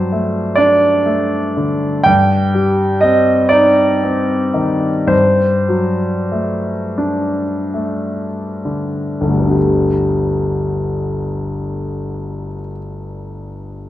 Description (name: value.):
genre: classical, romantic nocturne for solo piano.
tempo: 21-45 BPM (dotted quarters).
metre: 6/8.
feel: rubato.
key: G major.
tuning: A4 = 436 Hz.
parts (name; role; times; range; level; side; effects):
warm concert grand piano; solo; 0.0-13.9 s; G1 to G5; -14 LUFS; equal; none.
room: wet recital hall reverb, RT60 1.7 s.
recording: none.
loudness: -13 LUFS.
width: side -13 dB against mid.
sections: 0.0-9.5 A section; 9.5-13.9 B section.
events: slowing down 0.6-9.5.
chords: 0.0 D7/G; 2.1 Cm/G; 5.1 D7/G; 9.5 G.